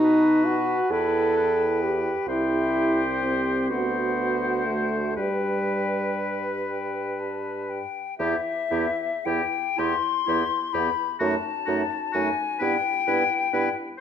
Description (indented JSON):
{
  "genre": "classical, slow romantic movement for wind quintet",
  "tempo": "40 BPM (dotted quarters)",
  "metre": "6/8",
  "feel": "uneven beats, rubato",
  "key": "G major, E minor from 8.2 s",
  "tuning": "A4 = 441 Hz",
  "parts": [
    { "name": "hollow concert flute", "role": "melody", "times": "0.0-13.8 s", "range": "E5 to C6", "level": "-28 LUFS", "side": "left 8 dB", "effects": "none" },
    { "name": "clear oboe", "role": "second line", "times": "0.0-13.7 s", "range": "F#4 to C5", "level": "-31 LUFS", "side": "left 4 dB", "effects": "none" },
    { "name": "clear French horn", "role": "accompaniment", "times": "0.0-13.7 s", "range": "G3 to A4", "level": "-25 LUFS", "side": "equal", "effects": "none" },
    { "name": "warm clarinet", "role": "accompaniment", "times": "0.0-13.7 s", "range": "D#4 to B4", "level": "-32 LUFS", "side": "right 7 dB", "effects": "none" },
    { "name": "dark bassoon", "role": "bass", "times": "0.0-13.7 s", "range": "C2 to B2", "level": "-30 LUFS", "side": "right 3 dB", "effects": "none" }
  ],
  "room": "wet recital hall reverb, RT60 1.4 s",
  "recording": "dark, warm production",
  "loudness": "-22 LUFS",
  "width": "side -8 dB against mid",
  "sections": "0.0-8.2 A section; 8.2-14.0 B section",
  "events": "none",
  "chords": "0.0 B7; 0.9 Em; 2.3 C; 3.7 D7; 5.2 G; 8.2 Em; 11.2 D#dim/F#; 12.6 Em/G"
}